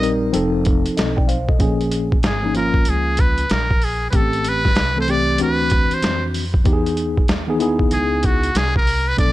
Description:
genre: hip hop, jazz-hop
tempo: 95 BPM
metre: 4/4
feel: swing 64% on 16ths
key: unclear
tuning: A4 = 440 Hz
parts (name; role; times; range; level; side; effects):
- trumpet with metal mute; melody; 0.0-9.3 s; F#4 to Eb5; -21 LUFS; equal; none
- mellow tine electric piano; accompaniment; 0.0-9.3 s; E3 to G5; -20 LUFS; left 2 dB; medium stereo tremolo
- upright bass; bass; 0.0-9.3 s; F1 to E#2; -24 LUFS; equal; none
- boom bap sampler-style drum kit; drums; 0.0-9.3 s; hi-hat, kick drum, snare drum; -19 LUFS; equal; none
room: little or no reverb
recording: none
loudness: -16 LUFS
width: side -16 dB against mid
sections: 0.0-9.3 A section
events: muted trumpet solo 0.0-9.3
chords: 0.3 F7; 1.6 A#m7; 4.1 Am7; 5.4 D9; 6.7 Emaj7

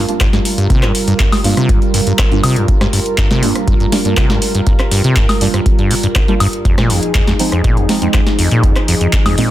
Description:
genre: acid house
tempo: 121 BPM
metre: 4/4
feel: straight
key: G phrygian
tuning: A4 = 437 Hz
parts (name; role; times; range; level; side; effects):
- warm analog pad; sustained chords; 0.0-9.5 s; F3 to Bb4; -20 LUFS; right 1 dB; chorus, sidechain pumping
- acid bass, saw; riff; 0.0-9.5 s; F2 to G3; -16 LUFS; equal; sidechain pumping
- deep mellow chord stab; stabs; 0.0-9.5 s; F3 to F4; -21 LUFS; right 3 dB; chorus, phaser, cassette tape, digital delay
- booming analog drum machine; drums; 0.1-9.5 s; handclaps, hi-hat, rim click, snare drum, woodblock; -18 LUFS; equal; overdrive
- electronic kick drum; drums; 0.2-9.2 s; none; -14 LUFS; equal; overdrive
room: light reverb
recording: dense, heavily limited modern master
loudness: -11 LUFS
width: side -14 dB against mid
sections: 0.0-9.5 A section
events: none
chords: 0.0 Gm7; 6.7 Fm7

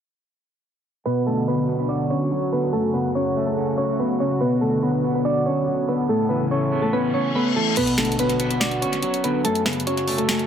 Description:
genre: hip hop, trap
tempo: 143 BPM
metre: 4/4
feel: half-time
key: B minor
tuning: A4 = 440 Hz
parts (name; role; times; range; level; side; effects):
- soft electric-piano-like synth keys; melody; 1.1-10.5 s; A3 to D5; -22 LUFS; equal; chorus, tape echo
- electric guitar at the edge of break-up; accompaniment; 1.1-10.5 s; F#2 to F#4; -24 LUFS; right 1 dB; wide subtle chorus, tape echo
- sweeping resonant pad; sustained chords; 1.1-7.8 s; C#3 to A4; -28 LUFS; equal; chorus
- reverse cymbal and impact; sound effects; 7.1-9.4 s; none; -30 LUFS; left 6 dB; none
- trap drum kit; drums; 7.8-10.5 s; crash cymbal, finger snaps, hi-hat, snare drum; -25 LUFS; left 1 dB; tape echo
room: moderate spring reverb, RT60 1.6 s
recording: echo-heavy mix, low-pass filter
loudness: -19 LUFS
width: side -8 dB against mid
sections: 1.1-7.8 A section; 7.8-10.5 B section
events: filter sweep 1.1-7.8; reverse cymbal 7.1-7.8; kick muted 7.8-10.5; impact 7.8-9.4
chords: 1.1 Bm; 2.7 F#m; 4.4 Bm; 6.1 Aadd9; 7.8 Bm; 9.4 F#m

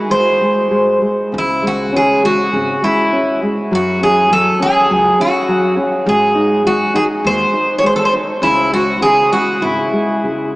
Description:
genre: fado-style ballad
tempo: 101 BPM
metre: 4/4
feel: rubato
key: C# harmonic minor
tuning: A4 = 439 Hz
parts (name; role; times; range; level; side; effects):
- nylon-string guitar; accompaniment; 0.0-10.5 s; C#3 to D#4; -18 LUFS; equal; none
- picked twelve-string acoustic guitar; melody; 0.1-10.5 s; E4 to C#5; -13 LUFS; equal; none
- upright bass; bass; 1.3-9.8 s; G#1 to G#2; -27 LUFS; equal; none
room: wet cathedral reverb, RT60 6.1 s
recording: in a vast, echoing space, small speaker sound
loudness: -12 LUFS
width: side -20 dB against mid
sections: 0.0-10.6 A section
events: none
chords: 0.0 N.C.; 1.3 C#m; 3.7 F#5; 6.1 G#5; 8.4 C#m

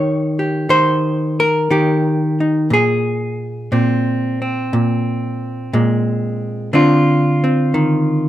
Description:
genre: solo jazz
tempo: 60 BPM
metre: 4/4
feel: swing 69% on 8ths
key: Bb mixolydian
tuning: A4 = 440 Hz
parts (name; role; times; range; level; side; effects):
- hollow-body jazz guitar; solo; 0.0-8.3 s; Bb2 to Db5; -14 LUFS; equal; none
room: light reverb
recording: close, detailed microphones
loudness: -14 LUFS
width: side -13 dB against mid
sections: 0.0-8.3 A section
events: none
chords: 0.0 Eb7; 2.7 Bbsus2; 6.7 Dm7

